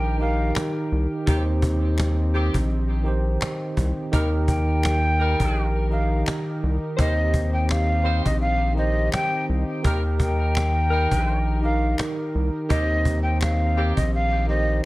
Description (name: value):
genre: hip hop, boom-bap hip-hop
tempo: 84 BPM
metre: 4/4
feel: swing 54% on 16ths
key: Eb major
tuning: A4 = 440 Hz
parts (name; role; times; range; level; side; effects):
- breathy jazz flute; melody; 0.0-14.8 s; Eb5 to G5; -26 LUFS; equal; high-pass filter, low-pass filter, digital delay
- bright tine electric piano; accompaniment; 0.0-14.9 s; Eb3 to C5; -28 LUFS; right 1 dB; medium stereo tremolo, cassette tape, high-pass filter, low-pass filter
- warm analog pad; sustained chords; 0.0-14.9 s; Eb3 to Bb4; -33 LUFS; left 1 dB; chorus, high-pass filter, low-pass filter
- round analog bass; bass; 0.0-14.8 s; Bb1 to Eb2; -22 LUFS; equal; none
- cajon; drums; 0.2-14.6 s; none; -27 LUFS; equal; vintage 12-bit sampler grit
- finger snaps; percussion; 0.6-13.6 s; none; -35 LUFS; left 4 dB; none
- clear saxophone section; stabs; 1.3-14.0 s; Eb3 to C5; -33 LUFS; left 1 dB; high-pass filter, low-pass filter, digital delay
room: studio reverb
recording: none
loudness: -20 LUFS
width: side -19 dB against mid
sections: 0.0-14.9 A section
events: kick muted 14.1-14.9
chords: 0.0 Eb